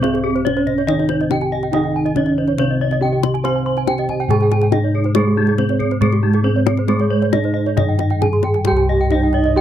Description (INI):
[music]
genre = Balinese gamelan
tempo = 140 BPM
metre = 4/4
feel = straight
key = C pelog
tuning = A4 = 440 Hz
[part]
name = gamelan-type bronze metallophone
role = melody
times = 0.0-9.6 s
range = Ab3 to C5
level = -19 LUFS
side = right 1 dB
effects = none
[part]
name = gamelan-type bronze metallophone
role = accompaniment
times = 0.0-9.6 s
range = C3 to C4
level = -27 LUFS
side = right 9 dB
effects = none
[part]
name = gamelan-type bronze metallophone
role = arpeggios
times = 0.0-9.6 s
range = Eb4 to C6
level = -24 LUFS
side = left 5 dB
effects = none
[part]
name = gamelan-type bronze metallophone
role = arpeggios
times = 0.0-9.6 s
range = G4 to C6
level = -25 LUFS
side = right 11 dB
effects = none
[part]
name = gamelan-type bossed gongs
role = bass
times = 0.0-9.6 s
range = C2 to C5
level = -19 LUFS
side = left 2 dB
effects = none
[part]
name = kendang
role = percussion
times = 0.0-9.5 s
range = none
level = -24 LUFS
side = left 12 dB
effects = none
[part]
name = breathy bright low xiao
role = second line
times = 9.1-9.6 s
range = C5 to Eb5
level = -23 LUFS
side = right 14 dB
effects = none
[sound]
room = light reverb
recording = dry, close 1970s-style studio recording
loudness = -14 LUFS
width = side -10 dB against mid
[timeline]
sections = 0.0-8.7 A section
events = none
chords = none